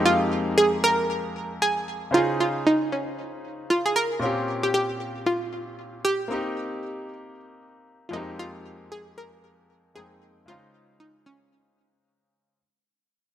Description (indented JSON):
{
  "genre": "amapiano",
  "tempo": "115 BPM",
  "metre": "4/4",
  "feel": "swing 58% on 16ths",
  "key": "unclear",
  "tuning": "A4 = 440 Hz",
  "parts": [
    { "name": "analog pluck", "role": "melody", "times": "0.0-11.7 s", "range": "Db4 to Bb4", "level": "-23 LUFS", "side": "right 1 dB", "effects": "chorus, digital delay" },
    { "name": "bright concert grand piano", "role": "accompaniment", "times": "0.0-12.6 s", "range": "F2 to G5", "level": "-29 LUFS", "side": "left 1 dB", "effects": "none" }
  ],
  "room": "moderate lush hall reverb, RT60 2.5 s",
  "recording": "none",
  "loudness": "-22 LUFS",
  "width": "side -11 dB against mid",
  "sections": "0.0-12.6 A section",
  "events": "drop 0.0-12.6; fade-out 0.0-12.6",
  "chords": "0.0 Fm11; 2.1 Dbmaj7; 4.2 Bbm69; 6.3 Cm7; 8.1 Fm11; 10.5 Dbmaj7"
}